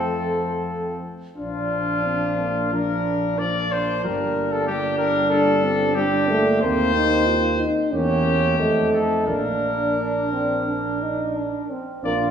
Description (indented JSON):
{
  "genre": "classical, brass quintet",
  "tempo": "85-96 BPM",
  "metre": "4/4",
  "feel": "rubato",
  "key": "Bb major",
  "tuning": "A4 = 436 Hz",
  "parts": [
    { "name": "clear trumpet", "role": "melody", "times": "0.0-12.3 s", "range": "F4 to D5", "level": "-25 LUFS", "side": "left 3 dB", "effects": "none" },
    { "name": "warm flugelhorn", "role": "second line", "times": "0.0-12.3 s", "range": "C4 to F4", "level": "-26 LUFS", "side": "right 3 dB", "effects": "none" },
    { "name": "clear trombone", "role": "accompaniment", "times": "0.0-12.3 s", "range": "F3 to Eb4", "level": "-26 LUFS", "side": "right 2 dB", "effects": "none" },
    { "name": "dark French horn", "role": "accompaniment", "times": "0.0-12.3 s", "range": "A3 to F4", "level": "-27 LUFS", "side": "left 2 dB", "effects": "none" },
    { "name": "warm bass trombone", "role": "bass", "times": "0.0-12.3 s", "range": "G1 to F2", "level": "-28 LUFS", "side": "equal", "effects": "none" }
  ],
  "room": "wet scoring stage reverb, RT60 1.9 s",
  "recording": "recorded in a church or concert hall, studio reverb",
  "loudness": "-19 LUFS",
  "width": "side -8 dB against mid",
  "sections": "0.0-12.0 A section",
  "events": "none",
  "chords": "0.0 F; 1.4 Bb; 4.0 Gm; 6.6 Cm7/Eb; 7.9 Edim7; 8.6 F7; 9.3 Bb"
}